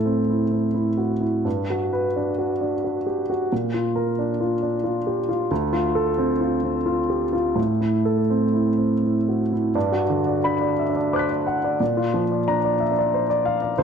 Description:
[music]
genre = neoclassical minimalist piano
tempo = 81-93 BPM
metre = 3/4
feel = rubato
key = unclear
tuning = A4 = 440 Hz
[part]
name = warm upright piano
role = solo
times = 0.0-13.8 s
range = D2 to B6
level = -20 LUFS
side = equal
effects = slapback echo
[sound]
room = light reverb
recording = dark, warm production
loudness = -20 LUFS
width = side -7 dB against mid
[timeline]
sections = 0.0-9.8 A section; 9.8-13.8 A section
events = none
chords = 0.0 Am; 1.5 Gmaj7; 3.5 Bb; 5.5 Dm7; 7.6 Am; 9.8 Gmaj7; 11.8 Bb

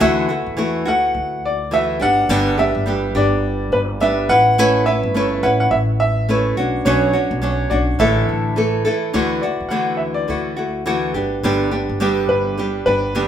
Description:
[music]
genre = acoustic pop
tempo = 105 BPM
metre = 4/4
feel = swing 60% on 16ths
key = D major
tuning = A4 = 439 Hz
[part]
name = clear upright piano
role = melody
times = 0.0-13.3 s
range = B4 to F#5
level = -19 LUFS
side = equal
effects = none
[part]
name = nylon-string guitar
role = accompaniment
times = 0.0-13.3 s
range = G2 to B4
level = -18 LUFS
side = right 1 dB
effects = none
[part]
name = upright bass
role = bass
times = 0.0-13.3 s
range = G1 to E2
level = -24 LUFS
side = left 1 dB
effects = none
[sound]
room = moderate large studio reverb, RT60 1.1 s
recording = band playing live in one room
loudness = -16 LUFS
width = side -9 dB against mid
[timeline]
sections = 0.0-9.1 A section; 9.1-13.3 B section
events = none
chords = 0.0 Dadd9; 2.0 G; 4.3 Aadd9; 6.6 Bmadd9; 8.0 Asus4; 9.1 Dadd9; 11.1 G

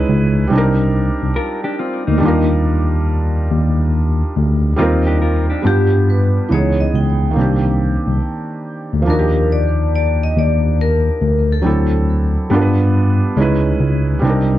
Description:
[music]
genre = lo-fi hip hop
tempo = 70 BPM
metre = 4/4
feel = swing 66% on 16ths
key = Eb major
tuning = A4 = 441 Hz
[part]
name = felt-muted upright piano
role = accompaniment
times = 0.0-14.6 s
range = Eb3 to Cb5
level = -19 LUFS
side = right 2 dB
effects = cassette tape, low-pass filter
[part]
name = mellow tine electric piano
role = bass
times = 0.1-14.6 s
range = C2 to G2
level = -15 LUFS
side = equal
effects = medium stereo tremolo
[part]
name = mellow electric guitar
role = second line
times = 1.4-5.9 s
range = Bb3 to Bb4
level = -23 LUFS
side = left 2 dB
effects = low-pass filter, tape echo
[part]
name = vibraphone with medium hard mallets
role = melody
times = 5.7-11.9 s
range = G4 to G5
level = -21 LUFS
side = left 4 dB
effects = low-pass filter
[sound]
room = light reverb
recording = dark, warm production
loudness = -13 LUFS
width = side -14 dB against mid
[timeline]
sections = 0.0-5.6 A section; 5.6-14.6 B section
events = none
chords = 0.0 Dbm9; 0.5 Cm9; 2.2 Ebmaj9; 4.8 Eb69; 5.6 G7; 6.5 Dbm9; 7.4 Cm9; 9.1 Ebmaj9; 11.6 D9; 12.5 G7; 13.4 Dbm9

